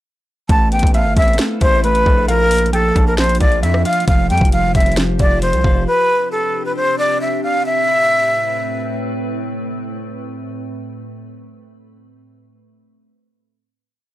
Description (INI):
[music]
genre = hip hop, trap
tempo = 134 BPM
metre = 4/4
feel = half-time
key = A minor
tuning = A4 = 440 Hz
[part]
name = breathy jazz flute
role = melody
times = 0.5-9.0 s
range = A4 to A5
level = -16 LUFS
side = equal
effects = none
[part]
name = mellow electric guitar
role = accompaniment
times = 0.5-5.9 s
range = F3 to F5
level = -22 LUFS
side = right 3 dB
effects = spring reverb
[part]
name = glassy FM pad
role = sustained chords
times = 1.2-12.0 s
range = A2 to C5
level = -26 LUFS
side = left 1 dB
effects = ensemble chorus, built-in reverb
[part]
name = distorted 808-style bass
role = bass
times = 0.5-5.9 s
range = F1 to F2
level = -18 LUFS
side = equal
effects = distortion
[part]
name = trap drum kit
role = drums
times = 0.5-5.7 s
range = hi-hat, kick drum, rim click, snare drum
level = -16 LUFS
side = equal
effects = none
[part]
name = warbly dusty pluck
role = second line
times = 0.9-4.1 s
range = E5 to A5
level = -28 LUFS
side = left 1 dB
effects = chorus, analog delay
[sound]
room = little or no reverb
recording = dry, gritty hardware recording, transformer saturation, cassette tape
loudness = -13 LUFS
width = side -14 dB against mid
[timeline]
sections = 0.5-7.7 hook; 7.7-11.2 final chord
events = none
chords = 0.5 Amadd9; 2.3 Bb; 4.1 Fsus2; 5.9 Csus2; 7.7 Amadd9